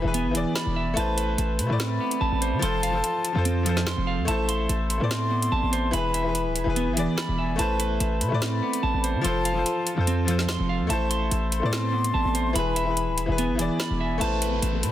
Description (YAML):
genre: hip hop, drill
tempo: 145 BPM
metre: 4/4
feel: half-time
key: A harmonic minor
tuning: A4 = 440 Hz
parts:
  - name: bright concert grand piano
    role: accompaniment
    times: 0.0-14.9 s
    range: E3 to D5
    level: -28 LUFS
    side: left 4 dB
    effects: none
  - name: clean electric guitar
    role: arpeggios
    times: 0.0-14.9 s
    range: E3 to C6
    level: -28 LUFS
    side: right 5 dB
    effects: digital delay
  - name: hard-hitting 808-style bass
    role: bass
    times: 0.0-14.9 s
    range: D1 to E3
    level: -27 LUFS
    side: equal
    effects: none
  - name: drill drum kit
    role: drums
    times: 0.1-14.9 s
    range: hi-hat, snare drum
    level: -31 LUFS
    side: equal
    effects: none
  - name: concert flute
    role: second line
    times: 1.6-14.9 s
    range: G#5 to C6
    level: -31 LUFS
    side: left 3 dB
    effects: digital delay
  - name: downlifter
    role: sound effects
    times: 14.2-14.9 s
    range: none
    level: -32 LUFS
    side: left 2 dB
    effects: none
room: light reverb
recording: dense, heavily limited modern master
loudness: -22 LUFS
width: side -12 dB against mid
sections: 0.0-14.2 A section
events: none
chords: 0.0 E; 1.0 Amadd9; 2.6 F; 4.3 Amadd9; 5.9 E; 7.6 Amadd9; 9.2 F; 10.9 Amadd9; 12.6 E; 14.2 Amadd9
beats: 0.14 0.56 | 0.97 1.38 1.80 2.21 | 2.62 3.04 3.45 3.87 | 4.28 4.69 5.11 5.52 | 5.93 6.35 6.76 7.18 | 7.59 8.00 8.42 8.83 | 9.24 9.66 10.07 10.49 | 10.90 11.31 11.73 12.14 | 12.56 12.97 13.38 13.80 | 14.21 14.62